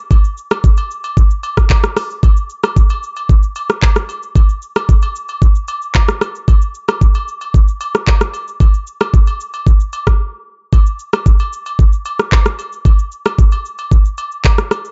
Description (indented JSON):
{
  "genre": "amapiano",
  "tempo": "113 BPM",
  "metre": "4/4",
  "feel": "straight",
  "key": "none",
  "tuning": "none",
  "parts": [
    { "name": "smooth R&B drum kit", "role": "drums", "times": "0.1-14.9 s", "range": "handclaps, hi-hat, kick drum, rim click, shaker", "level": "-13 LUFS", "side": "equal", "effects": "none" },
    { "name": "agogo bells and woodblock", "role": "percussion", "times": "0.1-14.8 s", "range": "none", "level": "-27 LUFS", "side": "equal", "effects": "none" }
  ],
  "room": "little or no reverb",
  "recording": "dark, warm production, nothing above 7.7 kHz",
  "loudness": "-14 LUFS",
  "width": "mono",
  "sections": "0.0-14.9 A section",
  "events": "break 10.2-10.7",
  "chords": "none",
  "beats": "| 0.11 0.64 1.17 1.70 | 2.23 2.76 3.29 3.83 | 4.36 4.89 5.42 5.95 | 6.48 7.01 7.54 8.07 | 8.60 9.13 9.66 10.20 | 10.73 11.26 11.79 12.32 | 12.85 13.38 13.91 14.44"
}